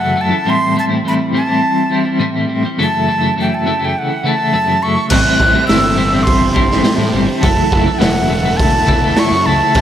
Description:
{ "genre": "psychedelic rock", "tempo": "103 BPM", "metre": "4/4", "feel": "straight", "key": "unclear", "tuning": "A4 = 440 Hz", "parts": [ { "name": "breathy bright jazz flute", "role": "melody", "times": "0.0-9.8 s", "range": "F#5 to F#6", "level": "-16 LUFS", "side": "right 1 dB", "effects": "analog delay" }, { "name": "twelve-string electric guitar", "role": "riff", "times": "0.0-9.8 s", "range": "F#2 to E4", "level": "-15 LUFS", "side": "left 1 dB", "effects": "tremolo" }, { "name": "overdriven combo organ", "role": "sustained chords", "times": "5.1-9.8 s", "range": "C4 to A5", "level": "-24 LUFS", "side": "right 5 dB", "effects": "none" }, { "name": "fuzz picked electric bass", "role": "bass", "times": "5.1-9.8 s", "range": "E1 to A2", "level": "-19 LUFS", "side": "right 1 dB", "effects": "overdrive" }, { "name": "raw garage drum kit", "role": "drums", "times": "5.1-9.8 s", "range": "crash cymbal, hi-hat, kick drum, snare drum", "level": "-16 LUFS", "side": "right 1 dB", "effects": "none" } ], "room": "wet plate reverb, RT60 1.4 s, small room ambience", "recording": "dreamy mix soaked in reverb", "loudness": "-11 LUFS", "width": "side -10 dB against mid", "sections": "0.0-9.8 A section", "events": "none", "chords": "0.5 Am7; 2.8 F#m7; 5.1 Am7; 7.4 F#m7", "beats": "| 0.46 1.04 1.62 2.21 | 2.79 3.37 3.95 4.53 | 5.11 5.69 6.28 6.86 | 7.44 8.02 8.60 9.18 | 9.76" }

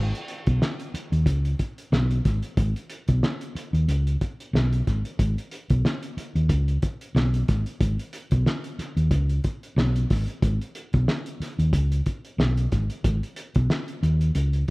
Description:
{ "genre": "funk", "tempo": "92 BPM", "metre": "4/4", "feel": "swing 56% on 16ths", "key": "G# minor", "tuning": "A4 = 444 Hz", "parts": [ { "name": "hollow-body short-scale fingered electric bass", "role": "bass", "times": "0.0-14.6 s", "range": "G#1 to D#2", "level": "-22 LUFS", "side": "equal", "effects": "none" }, { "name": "cloth-damped thuddy drum kit", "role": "drums", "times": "0.1-14.7 s", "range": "hi-hat, kick drum, snare drum", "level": "-26 LUFS", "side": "equal", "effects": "none" } ], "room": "little or no reverb", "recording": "rough home demo mix", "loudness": "-22 LUFS", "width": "side -25 dB against mid", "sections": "0.0-14.7 A section", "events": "none", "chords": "none", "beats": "0.61 1.26 1.92 | 2.57 3.23 3.88 4.53 | 5.19 5.84 6.50 7.15 | 7.81 8.46 9.12 9.77 | 10.42 11.08 11.73 12.39 | 13.04 13.70 14.35" }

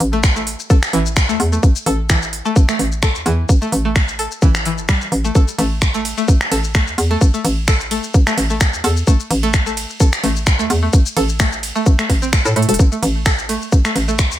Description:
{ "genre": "minimal techno", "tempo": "129 BPM", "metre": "4/4", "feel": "swing 54% on 16ths", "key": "unclear", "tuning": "A4 = 440 Hz", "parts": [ { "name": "hollow knocking FM bass", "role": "bass", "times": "0.0-14.4 s", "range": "E1 to A2", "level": "-19 LUFS", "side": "equal", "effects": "sidechain pumping" }, { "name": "garage drum kit", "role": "drums", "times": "0.0-14.4 s", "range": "finger snaps, hi-hat, ride cymbal, shaker", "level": "-20 LUFS", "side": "equal", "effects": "gated reverb" }, { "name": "string-like resonator pluck", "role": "riff", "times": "0.1-14.1 s", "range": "E3 to A4", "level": "-22 LUFS", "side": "equal", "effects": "chorus, sidechain pumping, digital delay" }, { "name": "electronic kick drum", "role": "drums", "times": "0.2-14.3 s", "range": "none", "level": "-12 LUFS", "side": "equal", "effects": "none" } ], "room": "digital ambience", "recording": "bright 1980s-style digital production", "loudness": "-13 LUFS", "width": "side -13 dB against mid", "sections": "0.0-14.4 A section", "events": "drum fill 12.6", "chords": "0.0 A5", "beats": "0.24 0.70 1.17 | 1.63 2.10 2.56 3.03 | 3.49 3.96 4.42 4.89 | 5.35 5.82 6.28 6.75 | 7.21 7.68 8.14 8.61 | 9.07 9.54 10.00 10.47 | 10.93 11.40 11.86 12.33 | 12.79 13.26 13.72 14.19" }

